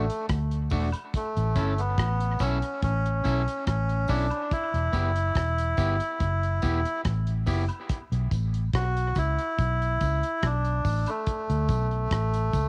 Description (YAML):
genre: dub reggae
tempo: 71 BPM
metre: 4/4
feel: straight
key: unclear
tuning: A4 = 440 Hz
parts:
  - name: melodica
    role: melody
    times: 0.0-12.7 s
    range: A3 to F#4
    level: -31 LUFS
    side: equal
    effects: cassette tape, dub echo, plate reverb
  - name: electric guitar at the edge of break-up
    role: accompaniment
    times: 0.0-7.6 s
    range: A3 to A4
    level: -37 LUFS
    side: equal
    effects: cassette tape, dub echo, plate reverb
  - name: vintage muted fingered electric bass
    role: bass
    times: 0.0-12.7 s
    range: E1 to D2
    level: -28 LUFS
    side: equal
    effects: none
  - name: damped 70s drum kit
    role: drums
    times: 0.1-12.7 s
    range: hi-hat, kick drum, rim click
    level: -32 LUFS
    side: equal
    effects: cassette tape
  - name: tambourine and woodblock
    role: percussion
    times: 0.7-12.7 s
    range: none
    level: -48 LUFS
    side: equal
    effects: dub echo
room: little or no reverb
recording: home recording on cassette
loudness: -27 LUFS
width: mono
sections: 0.0-12.7 A section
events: none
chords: 0.0 D; 1.1 A; 4.5 Em; 7.9 Asus2; 11.3 D5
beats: 0.30 | 1.14 1.98 2.83 3.67 | 4.52 5.36 6.20 7.05 | 7.89 8.74 9.58 10.43 | 11.27 12.12